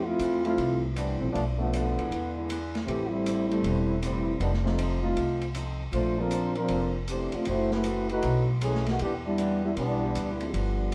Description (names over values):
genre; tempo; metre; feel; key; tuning
jazz, big band swing; 157 BPM; 4/4; swing 65% on 8ths; unclear; A4 = 440 Hz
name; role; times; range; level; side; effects
mellow trombone section; second line; 0.0-10.9 s; D3 to C5; -30 LUFS; equal; none
picked steel-string acoustic guitar; accompaniment; 0.0-10.9 s; F2 to C5; -41 LUFS; equal; none
upright bass; bass; 0.0-10.9 s; E1 to F2; -33 LUFS; equal; none
vintage drum kit; drums; 0.2-10.9 s; hi-hat, ride cymbal, snare drum; -41 LUFS; equal; none
clear concert grand piano; accompaniment; 0.4-10.5 s; E3 to E5; -41 LUFS; equal; none
room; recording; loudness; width
wet stone room reverb, RT60 1.1 s; band playing live in one room; -28 LUFS; mono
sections
0.0-10.9 A section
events
trombone section solo 0.0-10.9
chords
0.0 Fmaj7; 1.3 Bm7b5; 2.1 E7; 2.9 Am7; 4.4 F7; 5.9 Bbmaj9; 7.5 F#m7b5; 8.2 B7; 9.0 Em7